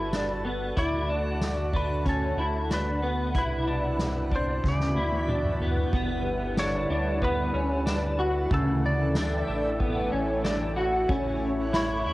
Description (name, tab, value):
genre	dream pop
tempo	93 BPM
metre	4/4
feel	straight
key	D major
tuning	A4 = 440 Hz
part	clean lap steel guitar	melody	0.0-12.1 s	A4 to D5	-33 LUFS	equal	cassette tape, analog delay
part	warm analog pad	sustained chords	0.0-12.1 s	B2 to C#5	-33 LUFS	equal	chorus, cassette tape
part	semi-hollow electric guitar	arpeggios	0.0-12.1 s	C#3 to F#4	-28 LUFS	equal	ensemble chorus, cassette tape, analog delay
part	round analog bass	bass	0.0-12.1 s	G1 to E2	-31 LUFS	equal	none
part	soft-mallet drum kit	drums	0.1-11.9 s	hi-hat, kick drum, ride cymbal, snare drum, tambourine, toms	-32 LUFS	equal	cassette tape
room	moderate spring reverb, RT60 2.3 s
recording	home recording on cassette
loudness	-24 LUFS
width	side -18 dB against mid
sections	0.0-5.9 A section; 5.9-12.1 B section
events	drum fill 4.6-5.9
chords	0.0 Gmaj9; 0.8 Dmaj7; 3.4 Cmaj9; 4.6 D69; 5.9 G6; 8.5 Dsus2; 11.1 A